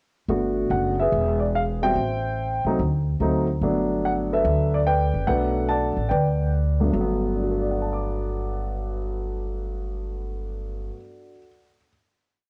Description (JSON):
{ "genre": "jazz piano trio", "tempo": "145 BPM", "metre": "4/4", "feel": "swing 67% on 8ths", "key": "G major", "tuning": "A4 = 440 Hz", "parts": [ { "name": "warm baby grand piano", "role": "melody", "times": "0.3-11.9 s", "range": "G2 to D6", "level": "-26 LUFS", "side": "equal", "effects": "plate reverb" }, { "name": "upright bass", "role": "bass", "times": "0.3-10.9 s", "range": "E1 to D2", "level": "-28 LUFS", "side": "equal", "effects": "tube saturation" } ], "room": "light reverb", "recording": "worn, warbling old tape, cassette tape, warbly pitch drift", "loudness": "-24 LUFS", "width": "mono", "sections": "0.3-6.9 A section; 6.9-10.2 final chord", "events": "none", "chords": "0.3 Gmaj9; 1.1 E; 2.0 Am7; 2.8 D7b9; 3.6 Gmaj9" }